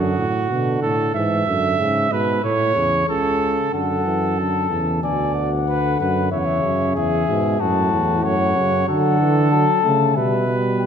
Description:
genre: classical, imitative canzona for brass ensemble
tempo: 93 BPM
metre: 4/4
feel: straight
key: unclear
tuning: A4 = 440 Hz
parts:
  - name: warm flugelhorn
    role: second line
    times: 0.0-10.9 s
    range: F#4 to E5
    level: -22 LUFS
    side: right 3 dB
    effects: none
  - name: mellow euphonium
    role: accompaniment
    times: 0.0-10.9 s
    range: A2 to A3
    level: -25 LUFS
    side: equal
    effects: none
  - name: mellow bass trombone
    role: bass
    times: 0.0-10.9 s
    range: C#2 to D3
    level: -21 LUFS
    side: right 2 dB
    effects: none
  - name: dark cornet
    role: melody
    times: 3.7-10.9 s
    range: E5 to A5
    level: -22 LUFS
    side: left 10 dB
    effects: none
room: wet concert hall reverb, RT60 1.8 s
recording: none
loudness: -17 LUFS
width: side -7 dB against mid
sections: 0.0-3.7 A section; 3.7-10.9 B section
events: none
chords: 0.0 D/F#; 1.2 E; 2.4 A; 3.7 D/F#; 5.0 G#dim/D; 6.3 C#m/E; 7.6 F#m; 8.9 D; 10.2 Em/B

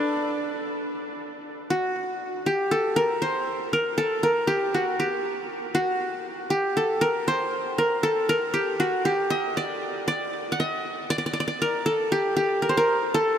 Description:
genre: arabic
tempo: 118 BPM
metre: 4/4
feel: straight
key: unclear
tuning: A4 = 442 Hz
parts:
  - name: qanun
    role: solo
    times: 0.0-13.4 s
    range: D4 to F#5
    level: -23 LUFS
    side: equal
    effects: tape echo
room: wet huge ambient reverb, RT60 7.8 s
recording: dreamy mix soaked in reverb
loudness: -23 LUFS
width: side -9 dB against mid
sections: 0.0-2.0 A section; 2.0-13.4 B section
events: none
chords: none

